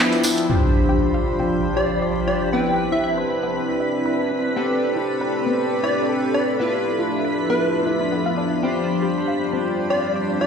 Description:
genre	deep house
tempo	118 BPM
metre	4/4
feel	swing 54% on 16ths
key	unclear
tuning	A4 = 440 Hz
part	dark analog pad	sustained chords	0.0-10.5 s	F3 to A5	-26 LUFS	equal	chorus
part	analog pluck	arpeggios	0.0-10.5 s	B3 to F5	-29 LUFS	left 3 dB	chorus, phaser, ping-pong delay
part	chorused polysynth	stabs	0.0-10.5 s	F3 to C5	-23 LUFS	left 1 dB	ping-pong delay
part	ethereal airy pad	texture	0.0-10.5 s	F3 to E6	-28 LUFS	equal	ensemble chorus, built-in reverb
part	string machine, violins	texture	0.0-10.5 s	G5 to B6	-33 LUFS	right 1 dB	ensemble chorus
part	electronic hi-hat	drums	0.1-0.5 s	none	-20 LUFS	right 1 dB	small room ambience
part	tambourine	percussion	0.1-0.5 s	none	-28 LUFS	right 2 dB	none
part	impact	sound effects	0.5-2.5 s	none	-23 LUFS	equal	none
part	plucky unison lead	melody	1.8-10.5 s	B4 to G5	-24 LUFS	equal	ping-pong delay
room	wet digital room reverb, RT60 1.2 s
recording	played on a big sound system in a bare room, stone room reverb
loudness	-18 LUFS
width	side -6 dB against mid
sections	0.5-10.5 A section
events	impact 0.5-2.5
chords	0.5 G7sus4; 2.5 Cmaj9; 4.6 Am11; 6.6 Dm69; 8.6 G7sus4

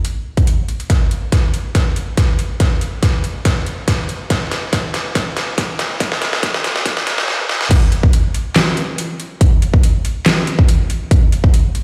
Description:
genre	dubstep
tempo	141 BPM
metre	4/4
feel	swing 54% on 16ths, half-time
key	none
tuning	none
part	dubstep drum kit	drums	0.0-11.8 s	crash cymbal, handclaps, hi-hat, snare drum, toms	-21 LUFS	equal	overdrive, high-pass filter on hats, high-pass filter on snare, high-pass filter on toms, high-pass filter on cymbals, high-pass filter on room
part	electronic kick drum	drums	0.4-11.5 s	none	-16 LUFS	equal	overdrive
room	moderate lush hall reverb, RT60 2.0 s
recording	played on a big sound system in a bare room, large studio reverb, high-pass filter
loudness	-16 LUFS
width	mono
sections	0.9-7.7 A section; 7.7-11.8 B section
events	build-up 0.9-7.7; drum fill 0.9-7.3, 7.3-7.7; filter sweep 0.9-7.7; drop 7.7-11.8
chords	none

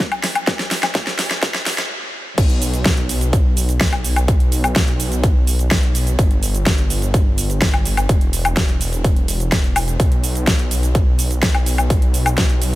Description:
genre	EDM, festival progressive house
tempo	126 BPM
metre	4/4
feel	straight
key	unclear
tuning	A4 = 442 Hz
part	big-room dance drum kit	drums	0.0-12.7 s	crash cymbal, hi-hat, shaker, snare drum, woodblock	-20 LUFS	equal	none
part	electronic kick drum	drums	0.0-12.5 s	none	-16 LUFS	equal	none
part	wide detuned saw bass	bass	2.4-12.8 s	E1 to B1	-20 LUFS	equal	chorus, sidechain pumping
room	little or no reverb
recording	high-pass filter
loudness	-15 LUFS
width	side -17 dB against mid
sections	0.0-2.4 A section; 2.4-12.8 B section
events	build-up 0.0-2.4; drum fill 0.0-1.9; filter sweep 0.0-2.4; stop 1.9-2.4; drop 2.4-12.8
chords	none

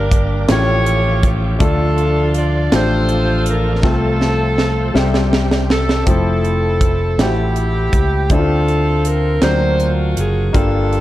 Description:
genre	slow gospel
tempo	54 BPM (dotted quarters)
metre	6/8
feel	straight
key	F major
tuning	A4 = 440 Hz
part	bright saxophone section	melody	0.0-11.0 s	C4 to D5	-20 LUFS	equal	tape echo
part	clear baby grand piano	accompaniment	0.0-11.0 s	G2 to E5	-21 LUFS	left 3 dB	none
part	bright tonewheel organ	sustained chords	0.0-6.1 s	C3 to G5	-26 LUFS	right 3 dB	slow rotary speaker, chorus vibrato
part	fingered electric bass	bass	0.0-11.0 s	F1 to D2	-17 LUFS	equal	none
part	crisp fusion drum kit	drums	0.1-11.0 s	hi-hat, kick drum, snare drum	-17 LUFS	right 1 dB	none
room	light reverb, small room ambience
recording	dark, warm production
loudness	-13 LUFS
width	side -15 dB against mid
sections	0.0-6.1 A section; 6.1-11.0 B section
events	drum fill 3.8-6.1; tonewheel organ fill 5.0-6.1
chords	0.5 Aaug7; 1.6 Dm; 3.8 F/C; 5.0 C; 6.1 Fmaj7; 8.3 Dm7; 9.4 D7alt

